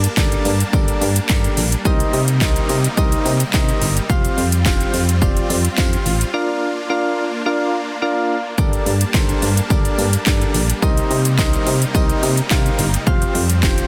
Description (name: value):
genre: dance-pop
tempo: 107 BPM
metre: 4/4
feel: straight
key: G minor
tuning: A4 = 441 Hz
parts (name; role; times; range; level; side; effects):
- supersaw chords; sustained chords; 0.0-13.9 s; C3 to A5; -28 LUFS; equal; sidechain pumping
- solid FM bass; bass; 0.0-13.8 s; F1 to C3; -21 LUFS; equal; sidechain pumping
- house drum kit; drums; 0.0-13.9 s; handclaps, hi-hat, kick drum, shaker, snare drum; -20 LUFS; equal; overdrive
- soft electric-piano-like synth keys; accompaniment; 0.2-13.9 s; C4 to G5; -24 LUFS; equal; chorus, sidechain pumping
- tambourine; percussion; 0.2-13.8 s; none; -38 LUFS; equal; none
room: light reverb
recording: dense, heavily limited modern master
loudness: -17 LUFS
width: mono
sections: 0.0-13.9 A section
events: drums muted 6.3-8.6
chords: 0.0 Gmadd9; 1.9 Cm7; 4.1 Fsus2; 6.3 Bb; 8.6 Gmadd9; 10.8 Cm7; 13.1 Fsus2